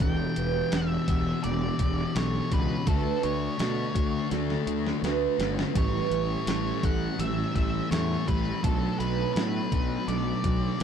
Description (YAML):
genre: rock, shoegaze and dream pop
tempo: 83 BPM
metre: 4/4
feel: straight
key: A mixolydian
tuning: A4 = 439 Hz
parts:
  - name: octave-fuzz lead guitar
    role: melody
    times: 0.0-10.8 s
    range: A4 to G5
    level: -35 LUFS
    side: equal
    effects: distortion, analog delay
  - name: picked twelve-string acoustic guitar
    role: arpeggios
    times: 0.0-10.8 s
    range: F#4 to F#5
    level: -34 LUFS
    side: right 8 dB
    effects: analog chorus, analog delay
  - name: mellow electric guitar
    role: riff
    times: 0.0-10.8 s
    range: A2 to G4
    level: -32 LUFS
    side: right 12 dB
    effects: reverse reverb
  - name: thick fuzz guitar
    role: riff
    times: 0.0-10.8 s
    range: E2 to D4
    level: -31 LUFS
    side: left 11 dB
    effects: distortion, wide subtle chorus
  - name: fuzz fingered electric bass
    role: bass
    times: 0.0-10.8 s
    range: E1 to B2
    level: -32 LUFS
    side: equal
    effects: overdrive
  - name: clean 12-bit digital drum machine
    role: drums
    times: 0.0-10.8 s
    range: hi-hat, kick drum, snare drum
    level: -29 LUFS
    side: equal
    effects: none
room: little or no reverb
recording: dark, warm production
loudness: -25 LUFS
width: side -8 dB against mid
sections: 0.0-10.8 A section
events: drum fill 4.3-5.8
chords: 0.0 Em7; 2.9 Dmaj7; 5.8 A7; 8.6 Bm7